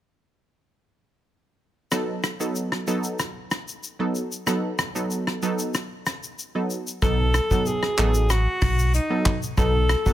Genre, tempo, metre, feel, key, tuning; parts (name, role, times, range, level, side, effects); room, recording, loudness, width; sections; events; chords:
afrobeats; 94 BPM; 4/4; straight; A4 = 440 Hz
analog pluck; accompaniment; 1.9-10.1 s; F#3 to A4; -27 LUFS; right 2 dB; chorus
soft-mallet drum kit; drums; 1.9-10.1 s; handclaps, hi-hat, kick drum, rim click, shaker; -26 LUFS; equal
breathy alto saxophone; melody; 7.0-10.1 s; D#4 to A4; -25 LUFS; equal; ping-pong delay
sub bass with octave; bass; 7.0-10.0 s; A1 to B1; -21 LUFS; equal
small room ambience; -22 LUFS; side -12 dB against mid
1.9-7.0 A section; 7.0-10.1 B section
1.9 B7